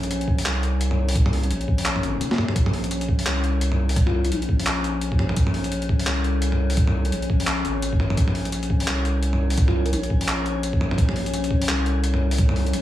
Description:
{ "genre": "half-time drum and bass", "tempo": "171 BPM", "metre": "4/4", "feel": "swing 59% on 16ths, half-time", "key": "Bb minor", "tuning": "A4 = 440 Hz", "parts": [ { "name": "saturated sub bass", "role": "bass", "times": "0.0-12.8 s", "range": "Ab1 to C2", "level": "-24 LUFS", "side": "equal", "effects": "none" }, { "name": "boom bap sampler-style drum kit", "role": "drums", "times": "0.0-12.8 s", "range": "handclaps, hi-hat, snare drum, toms", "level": "-26 LUFS", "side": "equal", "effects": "overdrive" }, { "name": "metallic inharmonic drone", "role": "texture", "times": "0.0-12.8 s", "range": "Db4", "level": "-29 LUFS", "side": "left 3 dB", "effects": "chorus, built-in reverb" }, { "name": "electronic kick drum", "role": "drums", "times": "0.3-12.5 s", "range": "none", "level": "-21 LUFS", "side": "equal", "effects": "overdrive" }, { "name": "bell-like FM electric piano", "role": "melody", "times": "4.1-4.4, 9.7-10.0 s", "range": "F4 to Bb4", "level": "-31 LUFS", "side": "left 1 dB", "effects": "chorus, phaser, dub echo" } ], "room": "digital ambience", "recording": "small room reverb", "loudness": "-20 LUFS", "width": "side -13 dB against mid", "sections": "0.0-12.8 A section", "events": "drum fill 2.2-2.6", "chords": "0.0 Bbm" }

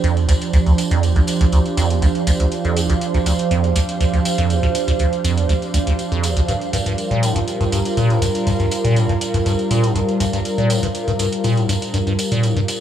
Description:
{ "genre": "acid house", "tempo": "121 BPM", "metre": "4/4", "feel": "straight", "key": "D minor", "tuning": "A4 = 436 Hz", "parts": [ { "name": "warbly tape-like pad", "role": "sustained chords", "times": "0.0-12.8 s", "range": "F3 to C5", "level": "-22 LUFS", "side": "right 2 dB", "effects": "chorus, built-in reverb" }, { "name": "liquid acid bass", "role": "riff", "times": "0.0-12.6 s", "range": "D2 to Bb2", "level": "-17 LUFS", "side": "right 1 dB", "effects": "phaser, overdrive, analog delay" }, { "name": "electronic hi-hat", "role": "drums", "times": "0.0-12.8 s", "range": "none", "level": "-30 LUFS", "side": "right 1 dB", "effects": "none" }, { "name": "tambourine", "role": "percussion", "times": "0.0-12.8 s", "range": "none", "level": "-30 LUFS", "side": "equal", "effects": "none" }, { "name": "ethereal airy pad", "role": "texture", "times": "0.0-12.8 s", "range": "D4 to F5", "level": "-26 LUFS", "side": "right 3 dB", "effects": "ensemble chorus, built-in reverb, phaser" } ], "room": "light reverb", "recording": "dry, gritty hardware recording", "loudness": "-16 LUFS", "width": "side -10 dB against mid", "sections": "0.0-12.8 A section", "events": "none", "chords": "0.0 Dm7; 6.5 Gm7" }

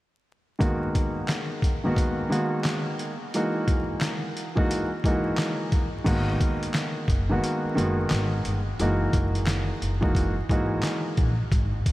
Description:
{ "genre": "hip hop, boom-bap hip-hop", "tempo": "88 BPM", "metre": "4/4", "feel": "swing 63% on 16ths", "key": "G# minor", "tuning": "A4 = 435 Hz", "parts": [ { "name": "dark concert grand piano", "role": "accompaniment", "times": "0.6-11.3 s", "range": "D#3 to F#4", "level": "-26 LUFS", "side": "equal", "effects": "cassette tape, high-pass filter, low-pass filter" }, { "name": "trip hop sampler-style drum kit", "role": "drums", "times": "0.6-11.9 s", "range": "crash cymbal, handclaps, hi-hat, kick drum, snare drum", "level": "-27 LUFS", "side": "equal", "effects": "none" }, { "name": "upright bass", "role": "bass", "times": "6.1-11.8 s", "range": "F#1 to A#1", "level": "-27 LUFS", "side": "equal", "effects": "none" } ], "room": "light reverb, digital ambience", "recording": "vinyl crackle", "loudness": "-23 LUFS", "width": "side -17 dB against mid", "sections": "0.6-6.1 A section; 6.1-11.9 B section", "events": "none", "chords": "0.6 G#m9; 3.3 F#13; 6.1 G#m9; 8.8 F#13" }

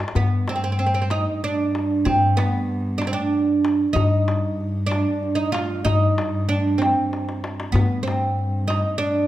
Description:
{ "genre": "Arabic maqam ensemble", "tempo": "63 BPM (dotted quarters)", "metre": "6/8", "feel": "straight", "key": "G maqam hijaz", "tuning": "A4 = 440 Hz", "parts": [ { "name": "upright bass", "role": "bass", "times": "0.0-8.8 s", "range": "G2", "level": "-24 LUFS", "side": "equal", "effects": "none" }, { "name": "darbuka", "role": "percussion", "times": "0.0-9.1 s", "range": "none", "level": "-25 LUFS", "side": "left 3 dB", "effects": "none" }, { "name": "oud", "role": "melody", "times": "0.2-9.3 s", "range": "B3 to F4", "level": "-21 LUFS", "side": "right 2 dB", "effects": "none" }, { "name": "muted cello", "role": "drone", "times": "0.2-9.3 s", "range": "G2", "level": "-31 LUFS", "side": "equal", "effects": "none" } ], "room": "light reverb", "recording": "close, detailed microphones", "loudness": "-19 LUFS", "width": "side -14 dB against mid", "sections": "0.2-9.3 A section", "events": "drum fill 0.0, 7.1-7.7", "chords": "none" }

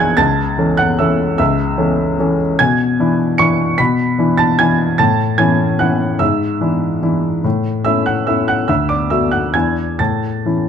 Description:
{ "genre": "classical, piano waltz", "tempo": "130-157 BPM", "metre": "3/4", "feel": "rubato", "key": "A major", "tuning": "A4 = 440 Hz", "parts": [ { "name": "warm baby grand piano", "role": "solo", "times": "0.0-10.7 s", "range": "B1 to C#7", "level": "-13 LUFS", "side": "equal", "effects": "none" } ], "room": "light reverb", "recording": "dark, warm production, faint mains hum", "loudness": "-13 LUFS", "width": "side -7 dB against mid", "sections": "0.0-10.7 A section", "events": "none", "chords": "0.2 A/C#; 2.6 E7/B; 5.0 A; 6.2 E7/G#; 7.4 A; 8.7 D; 9.5 E7; 10.0 A" }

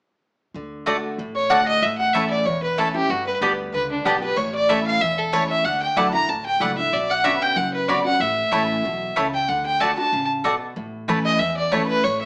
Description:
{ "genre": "bluegrass", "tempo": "188 BPM", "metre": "4/4", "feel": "swing 53% on 8ths", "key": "D major", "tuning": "A4 = 440 Hz", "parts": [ { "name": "upright bass", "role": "bass", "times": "0.5-12.3 s", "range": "E1 to E2", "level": "-37 LUFS", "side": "equal", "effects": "none" }, { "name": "picked steel-string acoustic guitar", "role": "accompaniment", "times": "0.6-12.3 s", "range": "E2 to G4", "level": "-27 LUFS", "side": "equal", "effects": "none" }, { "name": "mandolin", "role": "stabs", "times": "0.9-11.8 s", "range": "A3 to B5", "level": "-22 LUFS", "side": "equal", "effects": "none" }, { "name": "lap resonator guitar", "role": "second line", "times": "1.3-12.3 s", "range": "D4 to Bb5", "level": "-27 LUFS", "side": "equal", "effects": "none" }, { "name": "rich fiddle", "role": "melody", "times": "1.4-12.3 s", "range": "D4 to Bb5", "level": "-21 LUFS", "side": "equal", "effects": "none" } ], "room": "moderate studio reverb, RT60 0.8 s", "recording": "small speaker sound", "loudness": "-18 LUFS", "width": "side -35 dB against mid", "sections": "0.5-10.8 A section; 10.8-12.3 B section", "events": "none", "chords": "0.5 D; 1.8 A; 3.1 Gadd9; 4.4 A; 5.7 Dadd9; 6.9 Bmadd9; 8.2 A; 9.5 D; 10.8 A" }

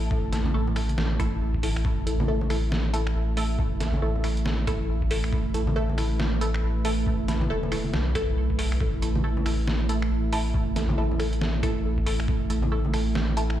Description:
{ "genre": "deep dubstep", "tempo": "138 BPM", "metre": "4/4", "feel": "swing 60% on 16ths, half-time", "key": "unclear", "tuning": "A4 = 440 Hz", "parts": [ { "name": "deep dark ambient pad", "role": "sustained chords", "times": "0.0-13.6 s", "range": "A3 to A5", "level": "-32 LUFS", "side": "right 3 dB", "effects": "chorus, built-in reverb" }, { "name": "soft dub sub bass", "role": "bass", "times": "0.0-13.6 s", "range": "E1 to B1", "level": "-26 LUFS", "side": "equal", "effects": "none" }, { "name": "electronic kick drum", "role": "drums", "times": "0.1-12.4 s", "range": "none", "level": "-28 LUFS", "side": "equal", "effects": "overdrive" }, { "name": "filtered dub chord stab", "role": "stabs", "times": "0.3-13.4 s", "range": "A3 to A4", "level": "-32 LUFS", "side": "equal", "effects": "phaser, cassette tape, dub echo" }, { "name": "trip hop sampler-style drum kit", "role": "drums", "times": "0.3-13.6 s", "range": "finger snaps, hi-hat, snare drum", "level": "-33 LUFS", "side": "equal", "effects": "overdrive" }, { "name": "congas", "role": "percussion", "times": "0.5-12.9 s", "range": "none", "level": "-33 LUFS", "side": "left 1 dB", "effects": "dub echo" } ], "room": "digital ambience", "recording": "played on a big sound system in a bare room, large studio reverb", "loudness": "-23 LUFS", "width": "side -12 dB against mid", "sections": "0.0-13.6 A section", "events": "none", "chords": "0.0 A5" }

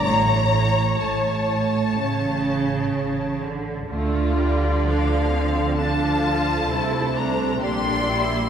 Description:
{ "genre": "classical, slow romantic movement for string orchestra", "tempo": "62-67 BPM", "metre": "4/4", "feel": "rubato", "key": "D minor", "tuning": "A4 = 439 Hz", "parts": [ { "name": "rich symphonic violin section", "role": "melody", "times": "0.0-8.5 s", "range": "F5 to C6", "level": "-27 LUFS", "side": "left 4 dB", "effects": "none" }, { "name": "warm symphonic violin section", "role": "second line", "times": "0.0-8.5 s", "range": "F4 to Bb5", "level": "-28 LUFS", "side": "left 1 dB", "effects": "none" }, { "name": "clear symphonic viola section", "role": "accompaniment", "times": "0.0-8.5 s", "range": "F3 to C#5", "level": "-26 LUFS", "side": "equal", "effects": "none" }, { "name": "clear symphonic cello section", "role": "bass", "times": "0.0-8.5 s", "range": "A2 to D3", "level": "-24 LUFS", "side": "right 3 dB", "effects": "none" }, { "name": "rich symphonic double bass section", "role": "bass", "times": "0.1-8.5 s", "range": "A1 to D2", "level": "-25 LUFS", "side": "right 2 dB", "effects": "none" } ], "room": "wet concert hall reverb, RT60 2.0 s", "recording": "recorded in a church or concert hall", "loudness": "-19 LUFS", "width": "side -8 dB against mid", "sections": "0.0-3.9 A section; 3.9-8.5 B section", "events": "none", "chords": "0.1 A; 3.9 Dm; 7.6 Gm/Bb" }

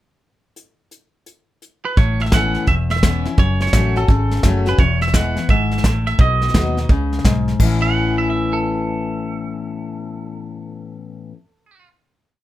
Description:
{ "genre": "honky-tonk and classic country", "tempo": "170 BPM", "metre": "4/4", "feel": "swing 64% on 8ths", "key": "A lydian", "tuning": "A4 = 444 Hz", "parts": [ { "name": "soft brush drum kit", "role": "drums", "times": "0.6-7.7 s", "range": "crash cymbal, hi-hat, kick drum, snare drum", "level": "-17 LUFS", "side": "equal", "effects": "none" }, { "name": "twangy electric guitar", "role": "second line", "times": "1.9-11.9 s", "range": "A4 to F#5", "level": "-24 LUFS", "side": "right 4 dB", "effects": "tape echo" }, { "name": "picked steel-string acoustic guitar", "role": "accompaniment", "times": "2.0-11.4 s", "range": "E2 to F#4", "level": "-22 LUFS", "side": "left 5 dB", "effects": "none" }, { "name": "vintage muted fingered electric bass", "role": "bass", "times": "2.0-11.3 s", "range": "E1 to D#2", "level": "-20 LUFS", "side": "equal", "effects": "none" } ], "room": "light reverb", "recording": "close, detailed microphones", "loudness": "-15 LUFS", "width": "side -14 dB against mid", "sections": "0.6-2.0 pickup bar; 2.0-7.6 interlude; 7.6-10.4 final chord", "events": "clean electric guitar solo 2.0-7.6", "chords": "0.6 N.C.; 2.0 Aadd9; 3.4 F#m; 4.8 E; 6.2 B; 7.6 Aadd9" }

